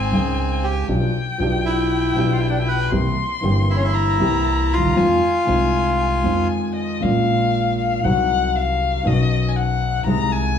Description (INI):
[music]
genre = tango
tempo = 118 BPM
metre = 4/4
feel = rubato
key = F minor, Bb minor from 7.0 s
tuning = A4 = 440 Hz
[part]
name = bandoneon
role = melody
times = 0.0-6.5 s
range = C4 to B4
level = -21 LUFS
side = equal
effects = none
[part]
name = warm violin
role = second line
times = 0.0-10.6 s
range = Eb5 to C6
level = -24 LUFS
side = left 7 dB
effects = none
[part]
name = warm concert grand piano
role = accompaniment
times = 0.0-10.6 s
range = G1 to Ab4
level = -21 LUFS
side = equal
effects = none
[part]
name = upright bass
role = bass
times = 0.0-10.6 s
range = G1 to F2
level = -23 LUFS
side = equal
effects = none
[sound]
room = moderate large studio reverb, RT60 1.2 s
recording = small room reverb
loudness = -17 LUFS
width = side -8 dB against mid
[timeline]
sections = 0.0-7.0 A section; 7.0-10.6 B section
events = break 6.5-7.0; violin solo 7.0-10.6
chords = 0.0 Dbsus2; 0.9 G7/B; 2.9 C7; 5.0 Fm7; 7.0 Bbm7; 8.0 Cdim; 9.1 Badd9; 10.1 Ab/C